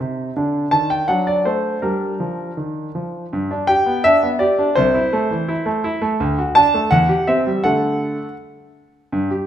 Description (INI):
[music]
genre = classical-period piano sonatina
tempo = 82 BPM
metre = 2/4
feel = rubato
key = G minor, G major from 3.3 s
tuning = A4 = 437 Hz
[part]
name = warm concert grand piano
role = solo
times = 0.0-9.5 s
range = C2 to A5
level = -16 LUFS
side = equal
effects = none
[sound]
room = wet recital hall reverb, RT60 1.6 s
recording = minimal, uncompressed stereo recording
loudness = -16 LUFS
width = side -10 dB against mid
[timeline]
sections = 0.0-3.3 A section; 3.3-9.5 A section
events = none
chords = 0.4 Ebmaj7#11/D; 1.1 D7/F#; 1.8 Gm; 3.3 G; 4.8 Am/C; 6.2 D; 6.9 C/E; 7.6 D